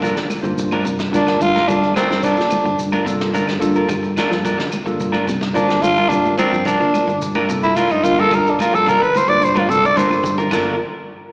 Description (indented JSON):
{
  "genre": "afrobeat",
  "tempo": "109 BPM",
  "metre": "4/4",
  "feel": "straight",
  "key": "G minor",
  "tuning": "A4 = 439 Hz",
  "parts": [
    { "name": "overdriven tine electric piano", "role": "accompaniment", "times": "0.0-10.8 s", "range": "Bb3 to C5", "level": "-24 LUFS", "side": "equal", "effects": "phaser, slapback echo" },
    { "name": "clean electric guitar", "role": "arpeggios", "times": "0.0-10.7 s", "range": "G2 to G3", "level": "-28 LUFS", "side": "equal", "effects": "analog chorus, slapback echo" },
    { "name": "clean electric guitar", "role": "stabs", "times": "0.0-10.7 s", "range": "D4 to Bb4", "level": "-22 LUFS", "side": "right 1 dB", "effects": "vibrato effect, slapback echo" },
    { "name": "fingered electric bass", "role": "bass", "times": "0.0-10.8 s", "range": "G1 to G2", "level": "-22 LUFS", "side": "equal", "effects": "none" },
    { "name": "soft brush drum kit", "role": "drums", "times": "0.0-10.6 s", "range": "crash cymbal, hi-hat, kick drum, snare drum", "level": "-29 LUFS", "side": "equal", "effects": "slapback echo" },
    { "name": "shekere", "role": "percussion", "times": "0.0-10.6 s", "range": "none", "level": "-34 LUFS", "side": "equal", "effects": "none" },
    { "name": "claves", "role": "percussion", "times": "0.3-10.6 s", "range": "none", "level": "-33 LUFS", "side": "equal", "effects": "none" },
    { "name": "congas", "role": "percussion", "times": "0.3-10.6 s", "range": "none", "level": "-26 LUFS", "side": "equal", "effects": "none" },
    { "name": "growling tenor saxophone", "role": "melody", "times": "1.2-10.4 s", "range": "C4 to D5", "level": "-15 LUFS", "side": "equal", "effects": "slapback echo" }
  ],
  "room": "light reverb, studio reverb",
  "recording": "live gig heard through the venue's PA, recital hall reverb, small speaker sound",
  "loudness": "-14 LUFS",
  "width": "side -28 dB against mid",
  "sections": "0.0-10.5 A section",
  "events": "tenor saxophone solo 0.0-10.5; drum fill 9.8-10.5",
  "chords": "0.0 Gm7",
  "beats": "0.03 0.58 1.13 | 1.69 2.24 2.79 3.34 | 3.89 4.45 5.00 5.55 | 6.10 6.65 7.20 7.75 | 8.30 8.86 9.41 9.96 | 10.51"
}